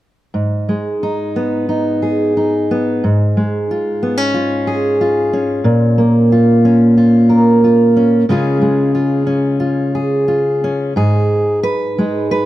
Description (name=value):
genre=folk, solo fingerstyle acoustic guitar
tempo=90 BPM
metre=4/4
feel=rubato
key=G# dorian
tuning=A4 = 439 Hz
part: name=fingerpicked steel-string acoustic guitar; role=solo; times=0.3-12.5 s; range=G#2 to B4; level=-12 LUFS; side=equal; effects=none
room=small room ambience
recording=dry, close 1970s-style studio recording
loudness=-12 LUFS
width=side -15 dB against mid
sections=0.3-11.0 A section; 11.0-12.5 B section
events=none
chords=0.3 G#m; 3.0 C#/G#; 5.7 A#m; 8.3 C#; 11.0 G#m